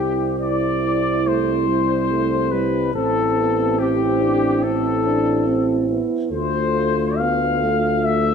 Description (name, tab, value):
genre	classical, hymn-like piece for brass band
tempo	71 BPM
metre	4/4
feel	rubato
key	C major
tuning	A4 = 441 Hz
part	mellow trumpet section	melody	0.0-8.3 s	G4 to F5	-22 LUFS	left 6 dB	none
part	dark French horn section	second line	0.0-8.3 s	E4 to F4	-23 LUFS	right 6 dB	none
part	warm euphonium	accompaniment	0.0-8.3 s	A3 to C4	-26 LUFS	left 4 dB	none
part	mellow tuba	bass	0.0-8.3 s	A1 to D2	-26 LUFS	equal	none
part	mellow euphonium	accompaniment	1.3-8.3 s	G3 to D4	-24 LUFS	right 3 dB	none
room	moderate scoring stage reverb, RT60 2.0 s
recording	minimal, uncompressed stereo recording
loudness	-17 LUFS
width	side -6 dB against mid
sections	0.0-8.3 A section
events	none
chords	0.0 C; 2.9 Am; 6.3 Dm7